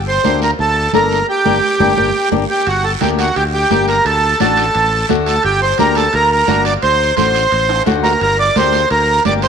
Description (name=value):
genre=latin, cumbia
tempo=173 BPM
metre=4/4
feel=straight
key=G harmonic minor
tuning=A4 = 442 Hz
part: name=modern bright fingered electric bass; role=bass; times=0.0-9.5 s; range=G1 to D2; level=-20 LUFS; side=equal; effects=none
part: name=accordion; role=melody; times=0.1-9.5 s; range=F#4 to D5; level=-13 LUFS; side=right 2 dB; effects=none
part: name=flamenco guitar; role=accompaniment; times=0.2-9.5 s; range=A3 to A4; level=-20 LUFS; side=left 11 dB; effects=none
part: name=congas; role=percussion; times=0.2-9.4 s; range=none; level=-23 LUFS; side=right 14 dB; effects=none
part: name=guiro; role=percussion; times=0.2-9.5 s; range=none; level=-29 LUFS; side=right 11 dB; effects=none
part: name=timbales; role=percussion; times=2.7-9.5 s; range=none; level=-27 LUFS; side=right 10 dB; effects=none
room=moderate echo chamber reverb, RT60 2.1 s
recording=1960s-style stereo with parts hard left and right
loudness=-11 LUFS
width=side -7 dB against mid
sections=0.0-2.7 A section; 2.7-9.5 A section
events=band accent 1.3-2.7; drum fill 7.7-8.2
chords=0.0 Gm; 4.1 D; 5.4 Gm; 6.8 D7; 8.2 Gm